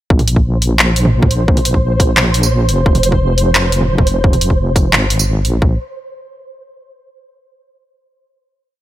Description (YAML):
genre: half-time drum and bass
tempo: 174 BPM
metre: 4/4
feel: half-time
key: unclear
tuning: A4 = 440 Hz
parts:
  - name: deep soft wobble bass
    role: bass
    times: 0.1-5.8 s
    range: F1 to Bb1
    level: -14 LUFS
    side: equal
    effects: chorus
  - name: electronic kick drum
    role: drums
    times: 0.1-5.7 s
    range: none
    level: -13 LUFS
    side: equal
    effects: overdrive
  - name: flickering grainy texture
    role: texture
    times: 0.6-5.6 s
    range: C5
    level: -21 LUFS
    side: right 1 dB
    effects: built-in reverb
  - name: drum and bass drum kit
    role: drums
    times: 0.2-5.5 s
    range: handclaps, hi-hat, tambourine, toms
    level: -15 LUFS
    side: right 1 dB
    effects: overdrive
room: light reverb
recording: none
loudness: -11 LUFS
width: side -14 dB against mid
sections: 0.1-5.6 drop; 5.6-7.0 final note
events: drop 0.1-5.6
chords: 0.1 Bbsus2; 2.9 Fm; 5.6 N.C.